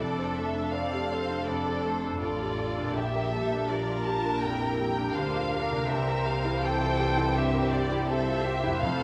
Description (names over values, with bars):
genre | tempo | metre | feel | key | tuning
cinematic | 81 BPM | 4/4 | rubato | unclear | A4 = 440 Hz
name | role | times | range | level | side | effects
muted symphonic violin section | melody | 0.0-9.0 s | C5 to A5 | -36 LUFS | equal | none
muted symphonic violin section | second line | 0.0-9.0 s | F4 to D5 | -36 LUFS | equal | none
felt-muted upright piano | accompaniment | 0.0-9.0 s | Bb1 to C5 | -34 LUFS | equal | none
muted symphonic viola section | accompaniment | 0.0-9.0 s | E3 to C5 | -37 LUFS | equal | none
concert harp | arpeggios | 0.0-9.0 s | F2 to A5 | -38 LUFS | equal | none
muted symphonic cello section | bass | 0.0-9.0 s | F2 to D3 | -39 LUFS | equal | none
muted symphonic double bass section | bass | 0.0-9.0 s | F1 to D2 | -39 LUFS | equal | none
timpani | percussion | 0.0-1.1, 8.8-9.0 s | F2 | -40 LUFS | equal | none
room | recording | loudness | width
moderate recital hall reverb, RT60 1.5 s | faint mains hum | -28 LUFS | mono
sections
0.0-9.0 A section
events
none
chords
0.0 Dm7/F; 3.0 Bb6; 5.9 C7